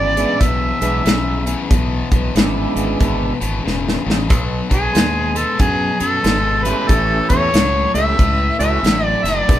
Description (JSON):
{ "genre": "electric blues shuffle", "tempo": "92 BPM", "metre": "4/4", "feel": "swing 63% on 8ths", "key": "E mixolydian", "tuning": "A4 = 441 Hz", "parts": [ { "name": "mellow harmonica", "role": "melody", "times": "0.0-9.6 s", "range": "G#4 to E5", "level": "-18 LUFS", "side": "right 1 dB", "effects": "overdrive" }, { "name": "cranked stack guitar", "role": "riff", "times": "0.0-9.6 s", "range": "E2 to G#3", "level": "-22 LUFS", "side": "left 4 dB", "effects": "overdrive" }, { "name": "modern bright fingered electric bass", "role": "bass", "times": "0.0-9.6 s", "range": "E1 to F#2", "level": "-21 LUFS", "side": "equal", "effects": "none" }, { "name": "tonewheel organ", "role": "accompaniment", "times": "0.2-9.6 s", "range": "G#3 to G#4", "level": "-23 LUFS", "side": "right 3 dB", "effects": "slow rotary speaker, overdrive" }, { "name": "natural country drum kit", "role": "drums", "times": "0.2-9.6 s", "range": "hi-hat, kick drum, snare drum", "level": "-17 LUFS", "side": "equal", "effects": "none" } ], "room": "moderate small room reverb, RT60 0.5 s", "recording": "band playing live in one room", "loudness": "-14 LUFS", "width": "side -12 dB against mid", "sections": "0.0-9.6 A section", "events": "drum fill 3.7-4.3", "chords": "0.0 E7; 4.3 B7; 6.9 A7" }